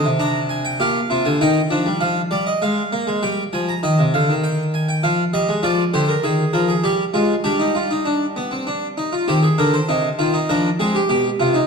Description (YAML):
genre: classical, baroque-style 3-part fugue for harpsichord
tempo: 99 BPM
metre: 3/4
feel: straight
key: C minor from 5.6 s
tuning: A4 = 440 Hz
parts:
  - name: harpsichord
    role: solo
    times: 0.0-11.7 s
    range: Bb2 to Bb5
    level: -16 LUFS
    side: equal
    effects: none
room: wet recital hall reverb, RT60 1.7 s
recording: dark, warm production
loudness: -17 LUFS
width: side -5 dB against mid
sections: 0.0-2.0 A section; 2.0-9.3 B section; 9.3-11.7 C section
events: none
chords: 0.2 Bb; 1.4 Eb; 2.0 Ddim/F; 3.2 Gm; 3.8 Cm (rootless); 5.0 Fm; 5.6 Ddim; 7.4 G5; 9.3 Cm; 10.5 Dm7b5/F; 11.1 G/B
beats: | 0.20 0.80 1.40 | 2.01 2.62 3.23 | 3.83 4.44 5.04 | 5.63 6.24 6.84 | 7.45 8.06 8.67 | 9.28 9.88 10.49 | 11.09